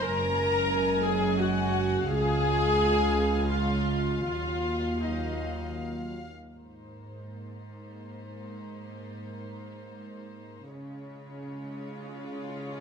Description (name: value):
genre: cinematic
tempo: 76-89 BPM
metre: 3/4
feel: rubato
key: unclear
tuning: A4 = 444 Hz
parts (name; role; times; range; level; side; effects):
- warm symphonic violin section; melody; 0.0-12.8 s; C5 to Ab5; -41 LUFS; left 4 dB; none
- dark studio violin section; second line; 0.0-12.8 s; Eb4 to Bb5; -36 LUFS; left 4 dB; none
- warm studio viola section; accompaniment; 0.0-12.8 s; Ab3 to Bb4; -30 LUFS; equal; none
- mellow French horn section; sustained chords; 0.0-6.2 s; Gb3 to F4; -36 LUFS; left 6 dB; none
- warm symphonic cello section; bass; 0.0-12.8 s; Db2 to Db3; -34 LUFS; right 3 dB; none
- warm symphonic double bass section; bass; 0.0-6.3 s; Gb1 to Eb2; -32 LUFS; right 2 dB; none
room: moderate scoring stage reverb, RT60 1.8 s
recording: none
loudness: -25 LUFS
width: side -6 dB against mid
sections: 0.0-6.6 A section; 6.6-12.8 B section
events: none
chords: 0.0 Gbsus2; 2.1 Db; 4.3 Ebmadd9; 6.6 Abadd9; 10.7 Db